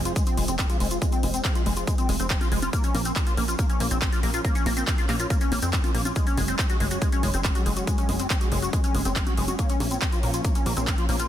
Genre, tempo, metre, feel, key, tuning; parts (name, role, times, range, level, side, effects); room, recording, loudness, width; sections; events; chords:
uplifting trance; 140 BPM; 4/4; straight; Bb minor; A4 = 440 Hz
analog string pad; sustained chords; 0.0-11.3 s; F3 to Db4; -33 LUFS; equal; ensemble chorus, sidechain pumping
plucky analog bass; bass; 0.0-11.3 s; F1 to F2; -28 LUFS; equal; sidechain pumping
liquid acid bass; arpeggios; 0.1-11.3 s; Ab3 to Gb4; -29 LUFS; left 2 dB; chorus, sidechain pumping, digital delay
big-room dance drum kit; drums; 0.1-11.3 s; congas, handclaps, hi-hat; -30 LUFS; right 1 dB
tube shaker; percussion; 0.1-11.3 s; -38 LUFS; left 2 dB
electronic kick drum; drums; 0.2-11.0 s; -25 LUFS; equal
little or no reverb; dense, heavily limited modern master; -22 LUFS; side -11 dB against mid
0.0-11.3 A section
filter sweep on analog synth pad 0.0-11.3
0.0 Fm; 2.7 Bbm; 6.2 Gbsus2; 9.6 Bbm